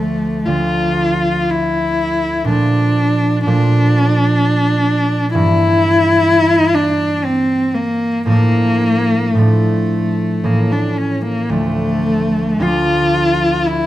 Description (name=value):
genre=classical, romantic duo for cello and harp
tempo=51-66 BPM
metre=3/4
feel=rubato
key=D minor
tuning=A4 = 440 Hz
part: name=dark cello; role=melody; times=0.0-13.9 s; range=A3 to F4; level=-15 LUFS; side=left 1 dB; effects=none
part: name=concert harp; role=accompaniment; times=0.0-13.9 s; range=D2 to D4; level=-16 LUFS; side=right 1 dB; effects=none
room=moderate recital hall reverb, RT60 1.4 s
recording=close, detailed microphones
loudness=-13 LUFS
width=side -14 dB against mid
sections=0.0-13.9 A section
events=none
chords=0.0 Dm; 2.5 Bbmaj7; 5.3 Em7b5/G; 8.3 Dm/A; 10.4 A; 11.5 Dm